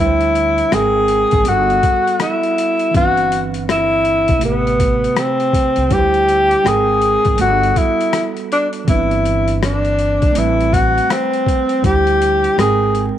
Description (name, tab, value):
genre	hip hop, jazz-hop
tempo	81 BPM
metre	4/4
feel	swing 62% on 16ths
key	G major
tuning	A4 = 440 Hz
part	breathy tenor saxophone	melody	0.0-13.0 s	B3 to Ab4	-15 LUFS	left 1 dB	none
part	bright tine electric piano	accompaniment	0.0-13.2 s	C3 to G5	-22 LUFS	right 9 dB	medium stereo tremolo
part	upright bass	bass	0.0-13.1 s	G1 to D2	-21 LUFS	equal	none
part	boom bap sampler-style drum kit	drums	0.2-13.2 s	hi-hat, kick drum, rim click	-20 LUFS	left 2 dB	overdrive
room	moderate spring reverb, RT60 2.5 s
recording	1960s-style stereo, vinyl crackle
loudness	-13 LUFS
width	side -11 dB against mid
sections	0.0-13.2 A section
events	none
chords	0.0 D9sus4; 0.7 Abmaj9; 1.5 Gmaj9; 2.9 Cmaj9/G; 4.4 Am9; 5.9 D9sus4; 6.7 Abmaj9; 7.4 Gmaj9; 8.9 Cmaj9/G; 10.4 Am9; 11.8 D9sus4; 12.6 Abmaj9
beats	0.72 1.47 2.21 | 2.95 3.69 4.43 5.17 | 5.91 6.65 7.39 8.13 | 8.87 9.61 10.35 11.10 | 11.84 12.58